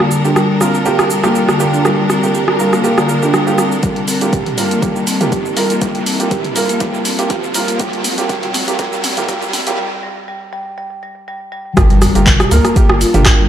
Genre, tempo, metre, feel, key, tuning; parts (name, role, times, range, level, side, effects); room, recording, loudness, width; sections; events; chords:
afro house; 121 BPM; 4/4; swing 54% on 16ths; G minor; A4 = 439 Hz
clear studio string section; sustained chords; 0.0-13.5 s; G3 to Bb4; -23 LUFS; equal; sidechain pumping
marimba with soft mallets; arpeggios; 0.0-13.5 s; D3 to G4; -18 LUFS; left 1 dB; sidechain pumping, low-pass filter, analog delay
deep house drum kit; drums; 0.0-13.4 s; cabasa, handclaps, hi-hat, rim click, toms; -18 LUFS; equal; studio reverb
riser and impact; sound effects; 1.1-13.5 s; -24 LUFS; right 1 dB
felt-muted upright piano; stabs; 0.2-13.4 s; Bb3 to Bb4; -19 LUFS; right 3 dB; sidechain pumping, analog delay
electronic kick drum; drums; 3.8-13.4 s; -15 LUFS; equal; studio reverb
round analog bass; bass; 11.8-13.5 s; G1 to D2; -14 LUFS; equal; sidechain pumping
moderate digital room reverb, RT60 1.2 s; dry, gritty hardware recording, high-pass filter; -12 LUFS; side -10 dB against mid
0.0-11.8 A section; 11.8-13.5 B section
build-up 0.0-11.8; filter sweep on marimba 0.0-11.8; filter sweep 0.0-11.8; riser 1.1-9.8; drum fill 3.8-9.8; break 9.8-11.8; drop 11.8-13.5; impact 11.8-13.5
0.0 Gm7